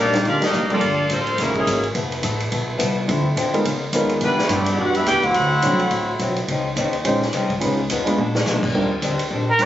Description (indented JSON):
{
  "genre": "jazz, big band swing",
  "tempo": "212 BPM",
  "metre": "4/4",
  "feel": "swing 60% on 8ths",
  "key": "unclear",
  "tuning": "A4 = 436 Hz",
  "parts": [
    { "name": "edgy saxophone section", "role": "melody", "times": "0.0-1.8, 4.2-6.4 s", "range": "E3 to G5", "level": "-20 LUFS", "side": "left 1 dB", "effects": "plate reverb" },
    { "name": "clear trombone section", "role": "second line", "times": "0.0-1.8, 4.2-6.4 s", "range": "C#3 to G4", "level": "-24 LUFS", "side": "right 2 dB", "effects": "none" },
    { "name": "fingerpicked swing-style acoustic guitar", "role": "accompaniment", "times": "0.0-9.7 s", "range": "Bb2 to Bb4", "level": "-26 LUFS", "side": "left 3 dB", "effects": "none" },
    { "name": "upright bass", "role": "bass", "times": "0.0-9.7 s", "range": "F1 to C3", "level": "-26 LUFS", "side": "equal", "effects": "none" },
    { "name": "warm grand piano", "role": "accompaniment", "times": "0.1-0.8, 3.1-9.7 s", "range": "F3 to C5", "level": "-23 LUFS", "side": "right 1 dB", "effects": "none" },
    { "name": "swinging big-band drum kit", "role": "drums", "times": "0.1-9.7 s", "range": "crash cymbal, hi-hat, kick drum, ride cymbal, snare drum, toms", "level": "-26 LUFS", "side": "right 1 dB", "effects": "none" },
    { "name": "clear trumpet", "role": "melody", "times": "9.5-9.7 s", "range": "Bb4", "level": "-15 LUFS", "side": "right 1 dB", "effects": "none" }
  ],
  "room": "moderate large studio reverb, RT60 0.9 s",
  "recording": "recorded on a phone in the room, club reverb, compression, nothing above 7.7 kHz",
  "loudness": "-18 LUFS",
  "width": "side -12 dB against mid",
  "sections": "0.0-8.7 A section",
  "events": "band accent 0.4; drum fill 8.2",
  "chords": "0.0 Cm9; 0.8 Gm9; 1.4 F#9; 2.0 Fmaj7#11; 3.1 Dm9; 3.7 Db13; 4.2 Cmaj9; 5.4 D9; 6.5 Dbmaj9; 7.6 Db9; 8.2 Bb7b9; 8.7 Ebmaj13",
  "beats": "0.26 0.54 | 0.82 1.11 1.39 1.67 | 1.96 2.24 2.52 2.81 | 3.09 3.37 3.65 3.94 | 4.22 4.50 4.79 5.07 | 5.35 5.63 5.92 6.20 | 6.48 6.76 7.05 7.33 | 7.61 7.90 8.18 8.46 | 8.74 9.03 9.31 9.59"
}